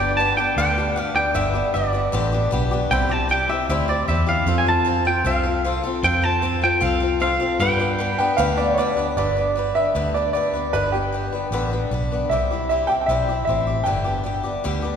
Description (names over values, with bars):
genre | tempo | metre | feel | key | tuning
honky-tonk and classic country | 154 BPM | 4/4 | straight | G mixolydian | A4 = 438 Hz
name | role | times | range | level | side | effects
twangy electric guitar | melody | 0.0-8.7 s | D5 to A5 | -21 LUFS | right 1 dB | none
picked swing-style acoustic guitar | accompaniment | 0.0-15.0 s | G2 to B4 | -24 LUFS | left 3 dB | none
vintage muted fingered electric bass | bass | 0.0-15.0 s | G1 to G2 | -24 LUFS | right 1 dB | none
bright upright piano | second line | 8.2-15.0 s | G4 to G5 | -22 LUFS | right 1 dB | none
room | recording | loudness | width
wet church reverb, RT60 2.7 s | recorded in a church or concert hall | -18 LUFS | side -7 dB against mid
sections
0.0-9.2 A section; 9.2-15.0 B section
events
upright piano solo 9.2-15.0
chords
0.0 G; 2.9 C; 4.5 F; 7.6 G; 12.3 C; 13.9 G